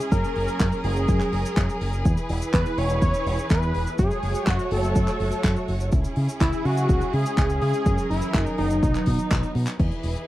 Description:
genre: italo disco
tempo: 124 BPM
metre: 4/4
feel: straight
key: unclear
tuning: A4 = 436 Hz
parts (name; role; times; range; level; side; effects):
- wide unison lead; melody; 0.0-9.5 s; D#4 to C#5; -27 LUFS; equal; tape echo
- rich symphonic string section; sustained chords; 0.0-10.3 s; E3 to C#5; -30 LUFS; right 1 dB; none
- damped 70s drum kit; drums; 0.0-10.3 s; cabasa, crash cymbal, handclaps, hi-hat; -34 LUFS; equal; studio reverb
- fingered electric bass with an envelope filter; bass; 0.1-10.1 s; E1 to C#3; -25 LUFS; equal; tube saturation
- electronic kick drum; drums; 0.1-9.9 s; none; -23 LUFS; equal; studio reverb
room: little or no reverb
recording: dry, close 1970s-style studio recording, vinyl crackle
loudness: -20 LUFS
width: side -15 dB against mid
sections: 0.0-9.8 A section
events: drum fill 9.3-9.8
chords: 0.1 F#add9; 2.1 E; 4.0 F#m; 5.9 C#m; 7.9 F#add9; 8.8 B

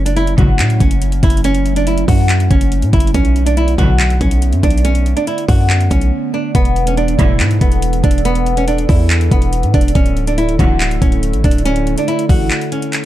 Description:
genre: hip hop, trap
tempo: 141 BPM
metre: 4/4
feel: half-time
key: F# minor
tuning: A4 = 440 Hz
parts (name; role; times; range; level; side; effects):
- flamenco guitar; melody; 0.0-13.1 s; B3 to F#4; -18 LUFS; right 1 dB; digital delay
- warbly tape-like pad; sustained chords; 0.0-13.1 s; D3 to A4; -23 LUFS; right 2 dB; chorus, built-in reverb
- hard-hitting 808-style bass; bass; 0.0-12.5 s; D1 to A2; -15 LUFS; equal; none
- trap drum kit; drums; 0.1-13.0 s; handclaps, hi-hat, kick drum; -15 LUFS; equal; none
- warm symphonic string section; stabs; 0.4-0.8, 3.8-4.2, 7.2-7.6, 10.6-11.0 s; A1 to F#3; -20 LUFS; equal; none
room: little or no reverb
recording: dark, warm production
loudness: -11 LUFS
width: side -14 dB against mid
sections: 0.0-13.1 A section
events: break 6.1-6.5, 12.5-13.1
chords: 0.0 F#m; 3.1 Bm7; 6.5 E7sus4; 10.0 Dsus2

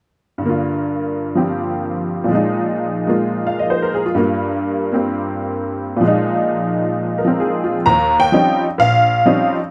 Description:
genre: solo jazz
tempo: 130 BPM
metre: 4/4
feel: swing 68% on 8ths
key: Eb major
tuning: A4 = 439 Hz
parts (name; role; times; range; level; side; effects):
- honky-tonk upright piano; solo; 0.4-9.6 s; Bb1 to Bb5; -18 LUFS; equal; none
room: little or no reverb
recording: close, detailed microphones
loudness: -18 LUFS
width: mono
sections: 0.4-7.9 A section; 7.9-9.7 B section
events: none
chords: 0.4 Gm7; 2.3 Bb7sus4; 4.2 Gm7; 6.0 Bb7sus4; 7.9 Eb13

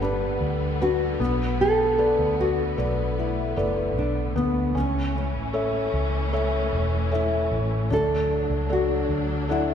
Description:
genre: pop ballad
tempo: 76 BPM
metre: 4/4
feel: straight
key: unclear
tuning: A4 = 440 Hz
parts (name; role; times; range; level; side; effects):
- nylon-string guitar; melody; 0.0-9.7 s; C#4 to A4; -26 LUFS; equal; none
- felt-muted upright piano; accompaniment; 0.0-9.7 s; G3 to F#5; -27 LUFS; left 2 dB; none
- warm studio string section; sustained chords; 0.0-9.7 s; D3 to D4; -31 LUFS; equal; none
- vintage muted fingered electric bass; bass; 0.0-9.7 s; E1 to D2; -27 LUFS; equal; none
room: wet scoring stage reverb, RT60 1.9 s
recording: recorded in a church or concert hall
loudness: -22 LUFS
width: side -8 dB against mid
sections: 0.0-9.7 A section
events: none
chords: 0.0 G; 1.2 Bm7; 4.8 A; 7.9 D

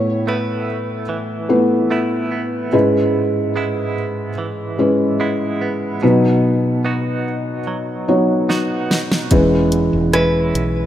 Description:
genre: pop ballad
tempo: 73 BPM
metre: 4/4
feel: straight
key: E major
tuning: A4 = 440 Hz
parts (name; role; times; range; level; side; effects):
- nylon-string guitar; melody; 0.0-2.3, 10.1-10.9 s; B4 to C#5; -23 LUFS; equal; tape echo
- felt-muted upright piano; accompaniment; 0.0-10.9 s; G#2 to C#5; -16 LUFS; equal; none
- direct-recorded clean electric guitar; arpeggios; 0.0-10.9 s; E2 to F#4; -26 LUFS; right 4 dB; tremolo
- smooth R&B drum kit; drums; 8.5-10.7 s; hi-hat, kick drum, rim click, snare drum; -19 LUFS; equal; none
- woody fretless electric bass; bass; 9.3-10.9 s; E1 to B1; -22 LUFS; equal; wide subtle chorus
room: light reverb, digital ambience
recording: rough home demo mix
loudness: -15 LUFS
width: side -11 dB against mid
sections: 0.0-10.9 A section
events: drum fill 8.5-9.3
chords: 0.0 Asus2; 2.7 E6/G#; 6.0 B; 9.3 E6

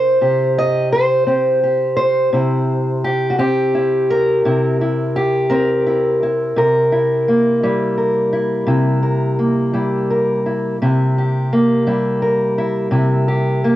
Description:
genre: acoustic country blues, solo or duo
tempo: 57 BPM (dotted quarters)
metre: 12/8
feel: straight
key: C mixolydian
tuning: A4 = 440 Hz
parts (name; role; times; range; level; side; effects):
- fingerpicked steel-string acoustic guitar; solo; 0.0-13.8 s; C3 to Eb5; -14 LUFS; equal; cassette tape
room: moderate booth ambience, RT60 0.2 s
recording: home recording on cassette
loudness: -14 LUFS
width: side -14 dB against mid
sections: 0.0-13.8 A section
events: none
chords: 0.0 C7

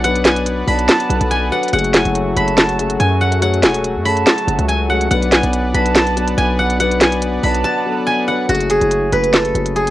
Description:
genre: hip hop, trap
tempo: 142 BPM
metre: 4/4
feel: half-time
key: F# minor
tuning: A4 = 440 Hz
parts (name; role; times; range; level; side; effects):
- steel-string zither; melody; 0.0-9.9 s; F#4 to B5; -19 LUFS; equal; cassette tape
- jazz flute; second line; 0.0-8.5 s; F#5 to A5; -25 LUFS; right 8 dB; cassette tape, tape echo
- dark grand piano; accompaniment; 0.0-9.9 s; F#3 to D5; -21 LUFS; left 5 dB; cassette tape
- pipe organ, strings celeste; sustained chords; 0.0-8.5 s; F#3 to F#5; -23 LUFS; equal; cassette tape
- distorted 808-style bass; bass; 0.0-9.9 s; E1 to F#2; -19 LUFS; equal; distortion
- trap drum kit; drums; 0.0-9.9 s; handclaps, hi-hat, snare drum; -15 LUFS; equal; vintage 12-bit sampler grit
room: light reverb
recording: home recording on cassette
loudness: -13 LUFS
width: side -15 dB against mid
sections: 0.0-8.5 A section; 8.5-9.9 B section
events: drums muted 7.6-8.5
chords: 0.0 Bm; 1.7 F#madd9; 5.1 Bm; 8.5 F#madd9

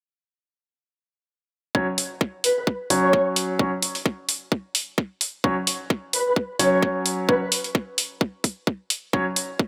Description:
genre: bass house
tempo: 130 BPM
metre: 4/4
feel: swing 54% on 16ths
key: unclear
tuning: A4 = 440 Hz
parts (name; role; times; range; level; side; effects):
- clear concert grand piano; stabs; 1.7-9.2 s; F#3 to C#5; -27 LUFS; equal; sidechain pumping, low-pass filter, tape echo
- electronic kick drum; drums; 1.7-9.7 s; none; -25 LUFS; equal; overdrive, high-pass filter on kick
- electronic hi-hat; drums; 2.0-9.5 s; none; -25 LUFS; equal; overdrive
- breathy flute-like synth lead; melody; 2.4-3.2, 6.1-7.5 s; B4 to C#5; -26 LUFS; equal; ensemble chorus, tape echo
room: light reverb, digital ambience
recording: none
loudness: -24 LUFS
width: mono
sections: 1.7-9.7 A section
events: none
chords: 1.7 F#5

